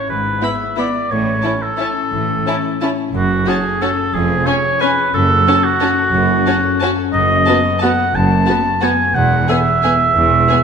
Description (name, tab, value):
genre	classical, orchestral ballroom waltz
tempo	179 BPM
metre	3/4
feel	uneven beats, rubato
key	E major from 7.1 s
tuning	A4 = 440 Hz
part	warm oboe	second line	0.0-10.6 s	F#4 to A5	-16 LUFS	right 2 dB	none
part	concert harp	arpeggios	0.0-10.6 s	E2 to E5	-22 LUFS	left 8 dB	none
part	clear chamber cello section	bass	0.1-10.4 s	E2 to A2	-22 LUFS	right 3 dB	none
part	warm chamber double bass section	bass	0.1-10.4 s	E1 to A1	-22 LUFS	right 4 dB	none
part	warm chamber violin section	melody	0.4-10.6 s	G#5 to B5	-27 LUFS	left 2 dB	none
part	warm studio violin section	second line	0.4-10.6 s	C#4 to G#4	-25 LUFS	left 4 dB	none
part	rich chamber viola section	accompaniment	0.4-10.6 s	B3 to C#4	-23 LUFS	equal	none
room	wet scoring stage reverb, RT60 1.4 s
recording	minimal, uncompressed stereo recording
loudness	-13 LUFS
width	side -6 dB against mid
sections	0.0-10.6 A section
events	none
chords	0.1 E/G#; 1.1 A; 3.1 F#m; 4.1 C#/E#; 5.1 F#m; 7.1 B7/F#; 9.2 E